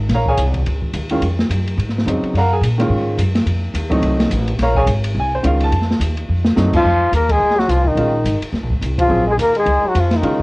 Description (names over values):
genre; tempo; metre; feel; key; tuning
jazz, small-group swing and bop; 214 BPM; 4/4; swing 59% on 8ths; Bb minor; A4 = 438 Hz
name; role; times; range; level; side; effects
upright bass; bass; 0.0-10.4 s; Ab1 to Db3; -18 LUFS; equal; none
warm baby grand piano; accompaniment; 0.1-10.4 s; Db3 to Bb5; -19 LUFS; equal; none
open jazz drum kit; drums; 0.1-10.4 s; crash cymbal, hi-hat, kick drum, ride cymbal, snare drum; -22 LUFS; equal; cassette tape
clear trombone; second line; 6.7-10.4 s; Eb3 to Bb3; -22 LUFS; right 1 dB; none
mellow flugelhorn; melody; 6.8-10.4 s; Eb4 to Bb4; -16 LUFS; left 2 dB; none
room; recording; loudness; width
light reverb, small room ambience; home recording on cassette; -14 LUFS; side -23 dB against mid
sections
0.0-6.8 A section; 6.8-10.4 B section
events
drum fill 6.3; band accent 7.3, 9.0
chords
0.0 Bbm9; 2.3 Gbmaj7; 3.5 F7b9; 4.6 Bbm9; 5.7 F7b9; 6.8 Bbm9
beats
| 0.10 0.38 0.66 0.94 | 1.22 1.50 1.78 2.06 | 2.35 2.63 2.91 3.19 | 3.47 3.75 4.03 4.31 | 4.59 4.87 5.15 5.43 | 5.71 6.00 6.28 6.56 | 6.84 7.12 7.40 7.68 | 7.97 8.25 8.53 8.81 | 9.10 9.38 9.66 9.94 | 10.23